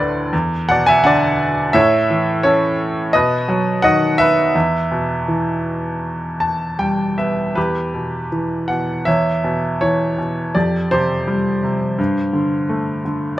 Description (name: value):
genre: classical, lyrical solo piano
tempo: 75-87 BPM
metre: 4/4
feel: rubato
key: E minor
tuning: A4 = 440 Hz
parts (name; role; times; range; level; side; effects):
- bright baby grand piano; solo; 0.0-13.4 s; D2 to A5; -15 LUFS; equal; none
room: little or no reverb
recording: close, detailed microphones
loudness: -15 LUFS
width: side -15 dB against mid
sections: 0.0-7.6 A section; 7.6-13.4 B section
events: grand piano fill 6.0-7.6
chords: 0.3 E5; 1.7 A; 3.1 B; 4.5 Em; 9.1 C#m7/E; 10.6 Fsus2; 12.0 Gsus2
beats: 0.33 1.04 | 1.74 2.44 3.14 3.83 | 4.55 5.28 6.02 6.79 | 7.57 8.32 9.07 9.82 | 10.55 11.27 11.99 12.70